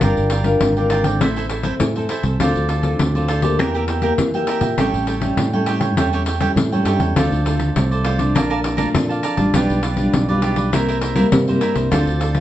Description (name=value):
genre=samba and choro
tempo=101 BPM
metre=4/4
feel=straight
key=D minor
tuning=A4 = 440 Hz
part: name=cavaquinho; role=accompaniment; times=0.0-12.4 s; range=E4 to A5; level=-24 LUFS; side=right 5 dB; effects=none
part: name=nylon-string guitar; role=accompaniment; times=0.0-12.4 s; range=G2 to Bb4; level=-21 LUFS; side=left 1 dB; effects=none
part: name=fingered electric bass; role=bass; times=0.0-12.4 s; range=G1 to E3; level=-20 LUFS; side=right 1 dB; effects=none
part: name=pandeiro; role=percussion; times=0.0-12.4 s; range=none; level=-22 LUFS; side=left 2 dB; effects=none
room=wet studio reverb, RT60 0.6 s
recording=heard from further back in the room, nothing above 8.0 kHz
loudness=-16 LUFS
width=side -13 dB against mid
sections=0.0-12.4 A section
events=none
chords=0.0 Gm7; 1.2 Am; 2.4 Dm7; 3.6 Edim; 4.8 A7; 7.2 Dm7; 8.4 Bbmaj7; 9.5 G7/B; 10.7 C7